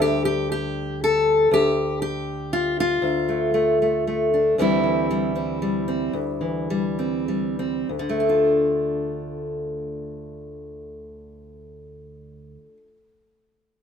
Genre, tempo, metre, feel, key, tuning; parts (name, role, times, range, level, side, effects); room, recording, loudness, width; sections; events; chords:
folk, solo fingerstyle acoustic guitar; 93-120 BPM; 3/4; straight; D minor; A4 = 440 Hz
fingerpicked steel-string acoustic guitar; solo; 0.0-13.0 s; D2 to A4; -21 LUFS; left 1 dB
light reverb; minimal, uncompressed stereo recording; -20 LUFS; side -7 dB against mid
0.0-4.6 A section; 4.6-7.9 B section; 7.9-11.7 C section
slowing down 4.6-7.9
0.0 Dsus4; 1.5 Dm; 4.6 C/D; 7.9 Dm